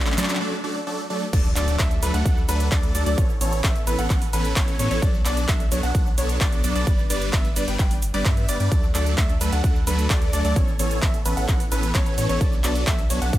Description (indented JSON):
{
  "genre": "EDM, festival progressive house",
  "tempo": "130 BPM",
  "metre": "4/4",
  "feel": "straight",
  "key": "D major",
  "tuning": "A4 = 436 Hz",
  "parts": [
    { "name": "clear grand piano", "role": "arpeggios", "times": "0.0-13.4 s", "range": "B4 to G5", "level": "-30 LUFS", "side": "left 2 dB", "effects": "sidechain pumping, tape echo" },
    { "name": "big supersaw lead", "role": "riff", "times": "0.0-13.4 s", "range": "E3 to G5", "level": "-26 LUFS", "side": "right 1 dB", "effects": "phaser, sidechain pumping, tape echo" },
    { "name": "big-room dance drum kit", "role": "drums", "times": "0.0-13.4 s", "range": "crash cymbal, handclaps, hi-hat, shaker", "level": "-28 LUFS", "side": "right 1 dB", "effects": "high-pass filter on hats, high-pass filter on snare, high-pass filter on perc, high-pass filter on cymbals, high-pass filter on room" },
    { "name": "riser and impact", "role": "sound effects", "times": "0.0-3.2 s", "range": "none", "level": "-34 LUFS", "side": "right 1 dB", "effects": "none" },
    { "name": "saturated sub bass", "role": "bass", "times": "1.3-13.4 s", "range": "G1 to A2", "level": "-25 LUFS", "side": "equal", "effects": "sidechain pumping" },
    { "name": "electronic kick drum", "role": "drums", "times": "1.3-13.4 s", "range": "none", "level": "-21 LUFS", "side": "equal", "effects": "none" }
  ],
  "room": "little or no reverb",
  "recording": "none",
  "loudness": "-19 LUFS",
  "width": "side -14 dB against mid",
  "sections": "0.0-1.3 A section; 1.3-13.4 B section",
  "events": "build-up 0.0-1.3; drum fill 0.0-0.4; riser 0.0-0.4; filter sweep on grand piano 0.0-1.3; break 0.4-1.3; drop 1.3-13.4; impact 1.3-3.2",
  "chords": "0.0 D/F#; 1.3 D; 3.2 Aadd9; 5.0 Bm7; 6.9 G; 8.7 D; 10.6 Aadd9; 12.4 Bm7",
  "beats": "0.41 0.87 | 1.33 1.79 2.25 2.72 | 3.18 3.64 4.10 4.56 | 5.02 5.49 5.95 6.41 | 6.87 7.33 7.79 8.26 | 8.72 9.18 9.64 10.10 | 10.56 11.02 11.49 11.95 | 12.41 12.87 13.33"
}